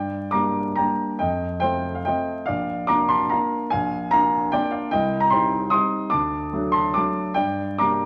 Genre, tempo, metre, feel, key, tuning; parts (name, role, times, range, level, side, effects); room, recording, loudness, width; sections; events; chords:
classical, romantic triple-time dance for piano with dotted rhythms; 146 BPM; 3/4; uneven beats, rubato; G minor; A4 = 445 Hz
warm concert grand piano; solo; 0.0-8.1 s; Bb1 to Eb6; -22 LUFS; equal
moderate stone room reverb, RT60 1.4 s; vinyl crackle; -22 LUFS; mono
0.0-8.1 A section
0.0 Gm; 1.2 F; 2.5 Bb; 3.7 Bb7; 4.9 Cm; 6.1 D; 7.4 Gm